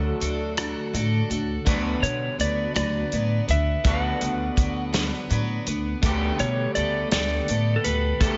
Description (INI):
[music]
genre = folk rock and heartland rock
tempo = 55 BPM (dotted quarters)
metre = 6/8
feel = straight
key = D major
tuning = A4 = 441 Hz
[part]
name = electric slide guitar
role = melody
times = 0.0-8.4 s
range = A4 to F#5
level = -30 LUFS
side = equal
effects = analog delay
[part]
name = picked twelve-string acoustic guitar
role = accompaniment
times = 0.0-8.4 s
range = D3 to B4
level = -33 LUFS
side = equal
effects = none
[part]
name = electric guitar through a small old amp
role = riff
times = 0.0-8.4 s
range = D3 to G4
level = -34 LUFS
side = equal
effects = subtle chorus
[part]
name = upright bass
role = bass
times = 0.0-8.4 s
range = D2 to B2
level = -28 LUFS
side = equal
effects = none
[part]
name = natural country drum kit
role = drums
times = 0.2-8.4 s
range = hi-hat, kick drum, rim click, snare drum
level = -28 LUFS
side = equal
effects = none
[sound]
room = studio ambience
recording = nothing above 7.7 kHz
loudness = -24 LUFS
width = mono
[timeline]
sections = 0.0-8.4 A section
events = none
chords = 0.0 D; 6.0 Gadd9/D